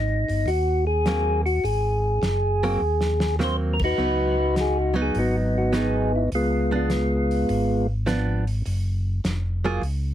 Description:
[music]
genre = soul jazz organ trio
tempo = 103 BPM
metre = 4/4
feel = swing 69% on 8ths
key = Ab mixolydian, Db mixolydian from 4.0 s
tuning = A4 = 441 Hz
[part]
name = percussive tonewheel organ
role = melody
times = 0.0-7.9 s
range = Ab3 to C5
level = -23 LUFS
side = equal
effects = slow rotary speaker
[part]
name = mellow tonewheel organ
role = bass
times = 0.0-10.1 s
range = F1 to Eb2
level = -24 LUFS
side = equal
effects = slow rotary speaker
[part]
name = warm soul drum kit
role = drums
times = 0.3-10.0 s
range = crash cymbal, hi-hat, kick drum, snare drum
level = -31 LUFS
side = equal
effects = none
[part]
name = hollow-body jazz guitar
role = accompaniment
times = 1.1-9.8 s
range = F3 to Ab4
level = -26 LUFS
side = right 3 dB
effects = none
[sound]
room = light reverb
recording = heavily compressed radio sound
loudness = -21 LUFS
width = side -11 dB against mid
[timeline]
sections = 0.0-4.0 A section; 4.0-10.1 B section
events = drum fill 2.8-3.4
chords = 0.0 Ab9; 4.0 Db9sus4; 6.3 Db7b9; 8.7 Gbmaj7(no3)

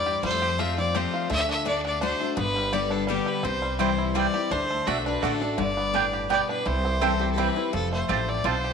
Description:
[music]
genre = bluegrass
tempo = 168 BPM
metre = 3/4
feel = straight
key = C major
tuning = A4 = 440 Hz
[part]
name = bluegrass banjo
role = melody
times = 0.0-8.7 s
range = D3 to G4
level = -31 LUFS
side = right 3 dB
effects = tape echo
[part]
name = clear fiddle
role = melody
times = 0.0-8.7 s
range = G4 to E5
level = -28 LUFS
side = left 2 dB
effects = tape echo
[part]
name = picked steel-string acoustic guitar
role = accompaniment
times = 0.0-8.7 s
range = F2 to G4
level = -29 LUFS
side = left 10 dB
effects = none
[part]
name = upright bass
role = bass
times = 0.0-8.7 s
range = F1 to F2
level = -31 LUFS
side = right 1 dB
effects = none
[part]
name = mandolin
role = stabs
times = 3.8-8.6 s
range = A3 to A5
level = -28 LUFS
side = right 11 dB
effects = none
[part]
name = lap resonator guitar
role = second line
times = 7.0-7.7 s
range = G4 to A4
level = -36 LUFS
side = left 8 dB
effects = none
[sound]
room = moderate plate reverb, RT60 2.4 s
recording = 1960s-style stereo with parts hard left and right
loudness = -23 LUFS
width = side -6 dB against mid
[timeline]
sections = 0.0-7.7 A section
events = none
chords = 0.2 F; 1.3 D; 2.4 G; 3.4 C; 4.5 D; 5.6 G; 6.7 C; 7.7 F

